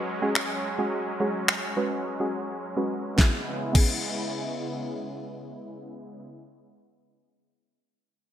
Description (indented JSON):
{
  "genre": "dance-pop",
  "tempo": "106 BPM",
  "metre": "4/4",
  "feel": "straight",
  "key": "C# minor",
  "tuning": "A4 = 440 Hz",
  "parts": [
    { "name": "soft round pluck", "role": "accompaniment", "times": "0.0-6.9 s", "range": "G#3 to B4", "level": "-30 LUFS", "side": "right 1 dB", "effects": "chorus, sidechain pumping, low-pass filter" },
    { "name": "supersaw pad", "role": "sustained chords", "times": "0.0-6.2 s", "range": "C#3 to E4", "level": "-33 LUFS", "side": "equal", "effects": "sidechain pumping, low-pass filter" },
    { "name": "smooth R&B drum kit", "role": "drums", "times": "0.4-3.9 s", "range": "crash cymbal, finger snaps, kick drum, snare drum", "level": "-24 LUFS", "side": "equal", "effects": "gated reverb" }
  ],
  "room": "moderate lush hall reverb, RT60 2.3 s",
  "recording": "bright 1980s-style digital production",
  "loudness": "-25 LUFS",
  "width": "side -11 dB against mid",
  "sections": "0.0-3.2 A section; 3.2-5.4 B section",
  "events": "filter sweep 0.0-3.2; break 2.1-3.2",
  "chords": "0.0 F#sus2; 3.2 C#m7"
}